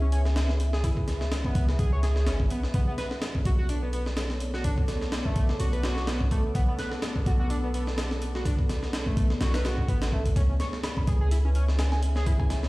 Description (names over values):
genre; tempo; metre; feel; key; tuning
breakbeat, breaks; 126 BPM; 4/4; swing 56% on 16ths; B dorian; A4 = 439 Hz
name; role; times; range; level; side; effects
deep dark ambient pad; sustained chords; 0.0-12.7 s; B3 to E5; -36 LUFS; equal; chorus, built-in reverb, sidechain pumping
overdriven synth lead; riff; 0.0-12.3 s; A3 to C#5; -35 LUFS; equal; analog chorus, digital delay
warm 808-style bass; bass; 0.0-12.7 s; G#1 to C#2; -26 LUFS; equal; none
breakbeat sampler-style drum kit; drums; 0.1-12.7 s; hi-hat, kick drum, snare drum; -28 LUFS; equal; none
soft synth bell; melody; 10.8-12.6 s; G#5 to B5; -39 LUFS; right 1 dB; chorus, small speaker sound, digital delay
room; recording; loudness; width
light reverb; played on a big sound system in a bare room, large studio reverb, vinyl crackle; -24 LUFS; side -20 dB against mid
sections
0.0-12.7 A section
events
none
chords
0.0 C#m7; 2.7 Bm9; 10.4 C#m7